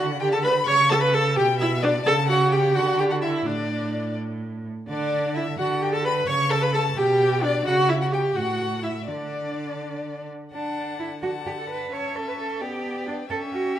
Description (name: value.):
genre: quick classical-period movement for string quartet.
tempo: 86 BPM (dotted quarters).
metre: 6/8.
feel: rubato.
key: D major.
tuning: A4 = 444 Hz.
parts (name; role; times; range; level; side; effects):
rich violin; melody; 0.0-13.8 s; D5 to C#6; -31 LUFS; left 10 dB; none.
rich violin; second line; 0.0-13.8 s; D5 to C#6; -32 LUFS; left 3 dB; none.
rich viola; accompaniment; 0.0-13.8 s; D3 to C#5; -24 LUFS; right 1 dB; none.
rich cello; bass; 0.0-13.8 s; A2 to C#5; -27 LUFS; right 3 dB; none.
room: wet recital hall reverb, RT60 1.6 s.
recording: none.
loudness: -21 LUFS.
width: side -11 dB against mid.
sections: 0.0-10.5 A section; 10.5-13.8 B section.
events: none.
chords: 0.0 D6; 0.7 Aadd9/C#; 1.4 G6/B; 2.1 F#m/C#; 2.8 Dadd9; 3.5 D5/A; 4.2 N.C.; 4.9 D69; 6.3 Aadd9/C#; 7.0 G/B; 7.7 Em69/C#; 8.4 F#m7/A; 9.1 N.C.; 10.5 D; 11.9 A/C#; 12.6 G/B; 13.3 A7/C#.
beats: | 0.68 1.37 | 2.06 2.75 | 3.46 4.17 | 4.89 5.59 | 6.28 6.97 | 7.66 8.36 | 9.07 9.80 | 10.52 11.22 | 11.92 12.61 | 13.29.